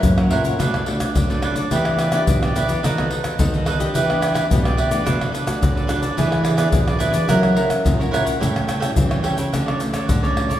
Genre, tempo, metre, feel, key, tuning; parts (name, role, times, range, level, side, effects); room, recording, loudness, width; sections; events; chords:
samba and choro; 107 BPM; 4/4; straight; B minor; A4 = 439 Hz
nylon-string guitar; accompaniment; 0.0-10.6 s; F#2 to A#4; -26 LUFS; equal
nylon-string guitar; bass; 0.0-10.6 s; F#2 to F#3; -23 LUFS; equal
egg shaker, surdo, pandeiro and tamborim; percussion; 0.0-10.6 s; -20 LUFS; equal
cavaquinho; accompaniment; 0.2-10.6 s; D4 to G5; -23 LUFS; right 1 dB
wet recital hall reverb, RT60 1.4 s; recorded in a church or concert hall; -17 LUFS; side -12 dB against mid
0.0-9.5 A section; 9.5-10.6 B section
0.0 F#7; 0.6 Bm7; 1.7 Em7; 2.8 B7/D#; 3.9 Em7; 5.1 Bm7; 6.2 E7; 7.3 F#7; 8.4 A7; 9.5 Dmaj7